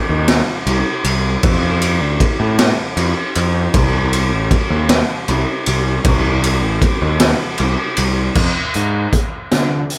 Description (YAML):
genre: quiet-loud alternative rock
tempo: 52 BPM (dotted quarters)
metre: 6/8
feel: straight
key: C dorian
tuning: A4 = 437 Hz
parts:
  - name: fuzz picked electric bass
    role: bass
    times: 0.1-9.8 s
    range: A1 to D3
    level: -20 LUFS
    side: equal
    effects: overdrive
  - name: raw garage drum kit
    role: drums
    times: 0.3-10.0 s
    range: crash cymbal, hi-hat, kick drum, ride cymbal, snare drum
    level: -18 LUFS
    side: equal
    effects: none
room: little or no reverb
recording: none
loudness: -16 LUFS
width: mono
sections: 0.0-8.4 A section; 8.4-10.0 B section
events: none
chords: none